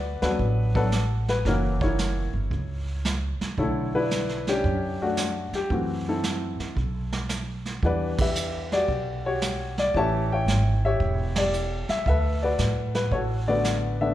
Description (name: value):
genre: jazz piano trio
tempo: 113 BPM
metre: 4/4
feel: swing 68% on 8ths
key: D major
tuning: A4 = 440 Hz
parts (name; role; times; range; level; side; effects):
- warm upright piano; melody; 0.0-14.1 s; D3 to A5; -26 LUFS; left 2 dB; none
- upright bass; bass; 0.0-14.1 s; E1 to A2; -27 LUFS; right 1 dB; none
- vintage brush drum kit; drums; 0.2-14.1 s; brushed snare drum, hi-hat, kick drum, ride cymbal, snare drum; -31 LUFS; right 2 dB; none
room: moderate scoring stage reverb, RT60 1.6 s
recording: recorded in a church or concert hall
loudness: -23 LUFS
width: side -13 dB against mid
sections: 0.0-14.1 A section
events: band accent 8.1, 11.3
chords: 0.0 D6; 1.5 F#7; 3.6 Bm11; 5.7 F#m7b5; 6.8 Asus2/B; 7.8 Em9; 9.9 A7; 12.1 D6